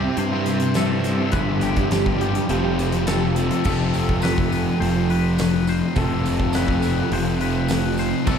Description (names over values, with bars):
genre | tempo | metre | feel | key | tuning
rock, shoegaze and dream pop | 104 BPM | 4/4 | straight | F lydian | A4 = 440 Hz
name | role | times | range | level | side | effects
granular cloud pad | sustained chords | 0.0-3.7 s | G4 to C6 | -31 LUFS | right 6 dB | built-in reverb
twangy electric guitar | arpeggios | 0.0-8.4 s | G4 to C5 | -30 LUFS | left 7 dB | wide subtle chorus, analog delay
overdriven electric guitar | riff | 0.0-8.4 s | F2 to E4 | -26 LUFS | right 6 dB | reverse reverb
overdriven electric guitar | riff | 0.0-8.4 s | F2 to C4 | -26 LUFS | left 1 dB | phaser
thick fuzz guitar | riff | 0.0-8.4 s | F2 to C4 | -25 LUFS | left 7 dB | distortion, analog chorus
fuzz picked electric bass | bass | 0.0-8.4 s | F1 to G2 | -25 LUFS | equal | overdrive
huge arena drum kit | drums | 0.2-8.4 s | crash cymbal, hi-hat, kick drum, snare drum | -26 LUFS | equal | none
tambourine | percussion | 0.5-8.4 s | none | -41 LUFS | right 10 dB | none
room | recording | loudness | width
moderate lush hall reverb, RT60 1.8 s, small room ambience | dreamy mix soaked in reverb | -18 LUFS | side -7 dB against mid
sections
0.0-3.7 A section; 3.7-8.4 B section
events
none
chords
0.0 C; 1.3 G7; 2.5 F